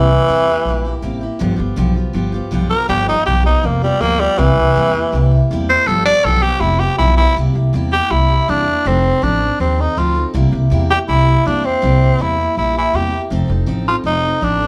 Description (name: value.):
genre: rockabilly.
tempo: 161 BPM.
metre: 4/4.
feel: straight.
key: C mixolydian.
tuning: A4 = 440 Hz.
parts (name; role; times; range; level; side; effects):
growling tenor saxophone; melody; 0.0-14.7 s; E3 to D5; -17 LUFS; equal; none.
picked steel-string acoustic guitar; accompaniment; 0.0-14.7 s; G2 to A4; -25 LUFS; equal; none.
upright bass; bass; 0.0-14.7 s; F1 to E2; -19 LUFS; equal; none.
room: moderate large studio reverb, RT60 0.9 s.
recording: band playing live in one room.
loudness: -15 LUFS.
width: mono.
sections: 0.0-7.4 A section; 7.4-14.7 B section.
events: tenor saxophone solo 0.0-7.4.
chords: 0.0 C7; 1.4 G7; 4.4 C7; 5.9 G7; 7.4 C7; 8.9 F7; 10.3 C7; 13.3 F7.